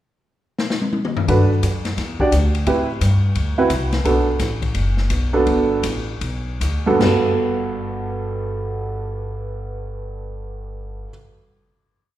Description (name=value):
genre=jazz, small-group swing and bop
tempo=146-173 BPM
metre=4/4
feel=swing 64% on 8ths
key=G major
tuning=A4 = 440 Hz
part: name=open jazz drum kit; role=drums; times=0.6-7.1 s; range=crash cymbal, hi-hat, kick drum, ride cymbal, snare drum, toms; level=-25 LUFS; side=left 3 dB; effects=none
part: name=warm concert grand piano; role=accompaniment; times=1.3-11.1 s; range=G2 to D5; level=-20 LUFS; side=right 2 dB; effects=none
part: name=upright bass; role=bass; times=1.3-11.0 s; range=F#1 to A2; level=-21 LUFS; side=equal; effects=none
room=moderate recital hall reverb, RT60 1.3 s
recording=recorded in a church or concert hall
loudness=-17 LUFS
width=side -13 dB against mid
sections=0.0-1.3 pickup bar; 1.3-7.0 A section; 7.0-10.3 final chord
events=drum fill 0.6-1.3; slowing down 4.1-7.0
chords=0.0 N.C.; 1.3 Gmaj9; 2.0 Em9; 2.7 Am9; 3.4 D7; 4.1 Gmaj9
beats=0.25 0.59 0.94 | 1.29 1.63 1.98 2.33 | 2.67 3.02 3.36 3.71 | 4.05 4.40 4.75 5.11 | 5.47 5.84 6.22 6.61 | 7.01 7.42 7.83 8.24 | 8.64 9.05 9.46 9.88